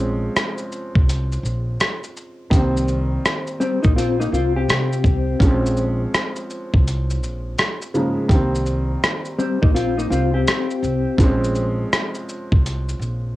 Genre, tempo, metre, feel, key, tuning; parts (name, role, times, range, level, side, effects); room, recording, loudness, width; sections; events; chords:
lo-fi hip hop; 83 BPM; 4/4; swing 64% on 16ths; Bb dorian; A4 = 440 Hz
felt-muted upright piano; accompaniment; 0.0-13.4 s; C3 to Db4; -25 LUFS; right 1 dB; cassette tape, low-pass filter
upright bass; bass; 0.0-13.3 s; Bb1 to C3; -22 LUFS; equal
dusty soul sampler-style drum kit; drums; 0.4-13.2 s; hi-hat, kick drum, rim click, shaker; -18 LUFS; equal; cassette tape
mellow electric guitar; second line; 3.6-11.2 s; G3 to G4; -21 LUFS; left 3 dB; harmonic tremolo, low-pass filter, cassette tape, tape echo
light reverb; home recording on cassette; -17 LUFS; side -16 dB against mid
0.0-13.4 A section
0.0 Bbm9; 2.5 Cm7; 5.4 Bbm9; 8.3 Cm7; 11.2 Bbm9